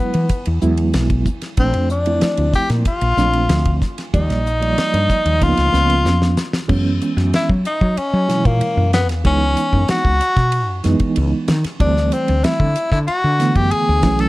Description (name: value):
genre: electric jazz fusion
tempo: 94 BPM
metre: 4/4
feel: straight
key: unclear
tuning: A4 = 440 Hz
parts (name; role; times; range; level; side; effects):
- clear tenor saxophone; melody; 0.0-14.3 s; A#3 to A4; -19 LUFS; left 2 dB; none
- bright reed electric piano; accompaniment; 0.0-14.3 s; B2 to D5; -21 LUFS; right 3 dB; fast tremolo
- woody fretless electric bass; bass; 0.1-14.3 s; Bb1 to F#3; -18 LUFS; equal; none
- damped 70s drum kit; drums; 0.1-14.3 s; crash cymbal, hi-hat, kick drum, ride cymbal, snare drum; -22 LUFS; equal; none
room: light reverb, small room ambience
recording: dark, warm production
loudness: -14 LUFS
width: side -18 dB against mid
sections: 0.0-6.7 A section; 6.7-14.3 B section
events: drum fill 6.1-6.7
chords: 0.0 Eadd9; 1.6 Bbmaj9; 4.1 Ebmaj9; 5.4 Db13; 6.7 F#9sus4; 11.8 D9sus4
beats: 0.30 0.94 | 1.58 2.22 2.86 3.50 | 4.14 4.78 5.42 6.06 | 6.70 7.34 7.98 8.62 | 9.25 9.89 10.53 11.17 | 11.81 12.44 13.08 13.72